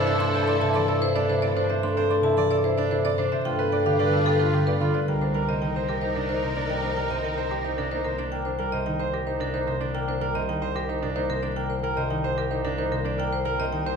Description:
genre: classical, minimalist pattern music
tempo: 111 BPM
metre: 3/4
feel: straight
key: C minor from 5.1 s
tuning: A4 = 438 Hz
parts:
  - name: marimba with hard mallets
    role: melody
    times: 0.0-14.0 s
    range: A4 to C6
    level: -29 LUFS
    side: left 4 dB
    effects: none
  - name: warm clarinet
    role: second line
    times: 0.0-8.1 s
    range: A4 to B4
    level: -33 LUFS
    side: right 2 dB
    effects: none
  - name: concert harp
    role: accompaniment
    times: 0.0-14.0 s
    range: C3 to D4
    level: -27 LUFS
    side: left 1 dB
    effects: none
  - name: rich symphonic violin section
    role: sustained chords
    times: 0.0-8.1 s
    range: Eb4 to B4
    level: -32 LUFS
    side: left 2 dB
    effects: none
  - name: clear grand piano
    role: arpeggios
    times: 0.0-14.0 s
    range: D4 to D5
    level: -29 LUFS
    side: right 6 dB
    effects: none
  - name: warm bass clarinet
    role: bass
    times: 0.0-14.0 s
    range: C2 to G2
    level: -31 LUFS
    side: right 1 dB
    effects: none
room: wet recital hall reverb, RT60 1.4 s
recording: recorded in a church or concert hall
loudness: -22 LUFS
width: side -6 dB against mid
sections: 0.0-5.1 A section; 5.1-14.0 B section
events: none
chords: 0.0 Am/G; 3.5 G7; 5.1 Cm7

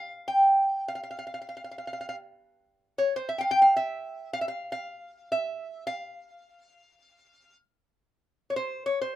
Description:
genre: Arabic maqam ensemble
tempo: free time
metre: none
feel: none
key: unclear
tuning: A4 = 440 Hz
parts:
  - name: lap resonator guitar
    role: solo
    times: 0.0-9.2 s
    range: C5 to G5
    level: -25 LUFS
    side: equal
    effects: none
room: light reverb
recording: minimal, uncompressed stereo recording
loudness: -25 LUFS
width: side -14 dB against mid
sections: 0.0-9.2 A section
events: none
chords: none

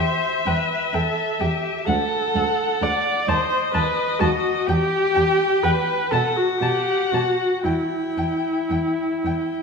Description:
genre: classical, slow romantic movement for string quartet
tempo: 37-43 BPM (dotted quarters)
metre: 6/8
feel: rubato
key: E minor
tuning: A4 = 439 Hz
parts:
  - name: muted violin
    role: melody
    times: 0.0-9.6 s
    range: D#5 to G5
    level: -26 LUFS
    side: left 6 dB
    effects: none
  - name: muted violin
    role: second line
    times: 0.0-9.3 s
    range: F#5 to A5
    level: -30 LUFS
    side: left 2 dB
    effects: none
  - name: muted viola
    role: accompaniment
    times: 0.0-9.6 s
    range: E4 to D5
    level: -22 LUFS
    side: equal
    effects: none
  - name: muted cello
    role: bass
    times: 0.0-9.3 s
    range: D2 to B2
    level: -26 LUFS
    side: right 2 dB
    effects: none
room: wet scoring stage reverb, RT60 1.7 s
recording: none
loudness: -19 LUFS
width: side -5 dB against mid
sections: 0.0-9.6 A section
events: none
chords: 0.0 Em; 1.9 D; 3.3 D#m6; 4.7 Em; 6.1 B5; 7.6 Em

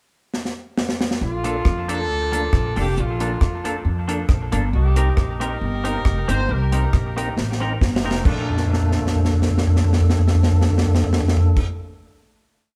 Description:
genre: ska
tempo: 136 BPM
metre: 4/4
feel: swing 54% on 8ths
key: Bb major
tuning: A4 = 438 Hz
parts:
  - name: deep reggae drum kit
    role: drums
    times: 0.3-11.7 s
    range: crash cymbal, hi-hat, kick drum, rim click, snare drum, toms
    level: -21 LUFS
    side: equal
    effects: none
  - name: warm horn section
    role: melody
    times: 1.2-7.4 s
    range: A3 to C5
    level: -29 LUFS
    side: equal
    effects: none
  - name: upright bass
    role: bass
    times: 1.2-11.6 s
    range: F1 to F2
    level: -26 LUFS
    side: equal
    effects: none
  - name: semi-hollow electric guitar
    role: accompaniment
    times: 1.4-11.8 s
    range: F3 to Bb4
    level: -33 LUFS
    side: equal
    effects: spring reverb, dub echo
  - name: percussive tonewheel organ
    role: stabs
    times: 1.4-11.6 s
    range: Bb3 to Bb4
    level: -30 LUFS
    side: equal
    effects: overdrive, chorus vibrato, slow rotary speaker
room: moderate stone room reverb, RT60 1.4 s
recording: band playing live in one room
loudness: -20 LUFS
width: mono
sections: 0.0-1.2 pickup bar; 1.2-8.3 head; 8.3-11.8 final chord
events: drum fill 0.3-1.2, 7.4-8.3, 8.5-11.6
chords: 0.0 N.C.; 1.2 Bbmaj7; 4.7 Cm7; 8.3 Bbmaj7

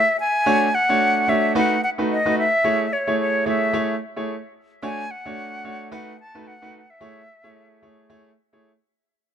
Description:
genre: afrobeats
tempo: 110 BPM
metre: 4/4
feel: swing 58% on 16ths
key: unclear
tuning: A4 = 440 Hz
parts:
  - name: bright concert flute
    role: melody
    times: 0.0-8.0 s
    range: C#5 to A5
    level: -20 LUFS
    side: left 1 dB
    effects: none
  - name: bright grand piano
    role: accompaniment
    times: 0.5-8.7 s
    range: A3 to C#5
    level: -23 LUFS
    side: right 1 dB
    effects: none
room: light reverb, studio reverb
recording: dark, warm production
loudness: -18 LUFS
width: side -8 dB against mid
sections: 0.0-9.2 A section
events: fade-out 0.0-9.2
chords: 0.5 Dmaj7; 1.6 B7; 2.6 Amaj7; 4.8 Dmaj7; 5.9 B7; 7.0 Amaj7

